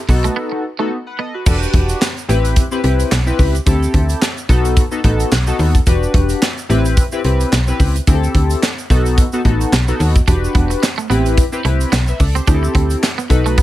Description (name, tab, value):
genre	early-eighties boogie funk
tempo	109 BPM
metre	4/4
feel	swing 56% on 16ths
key	E minor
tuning	A4 = 440 Hz
part	chorused polysynth	accompaniment	0.1-13.6 s	B3 to F#5	-20 LUFS	left 2 dB	none
part	twangy electric guitar	riff	0.1-1.3, 10.3-13.6 s	A3 to D4	-24 LUFS	right 8 dB	analog chorus
part	slap-like FM bass	bass	0.1-13.6 s	E1 to D#2	-16 LUFS	equal	none
part	modern studio drum kit	drums	0.1-13.6 s	crash cymbal, handclaps, hi-hat, kick drum, snare drum	-16 LUFS	equal	none
part	tube shaker	percussion	0.1-13.6 s	none	-33 LUFS	right 6 dB	none
room	small room ambience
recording	none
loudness	-13 LUFS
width	side -15 dB against mid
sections	0.0-1.5 A section; 1.5-13.6 B section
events	break 0.4-1.5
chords	0.1 B7; 1.5 Em9; 2.3 Am9; 3.7 D9sus4; 4.5 B7; 5.9 Em9; 6.7 Am9; 8.1 D9sus4; 8.9 B7; 10.3 Em9; 11.1 Am9; 12.5 D9sus4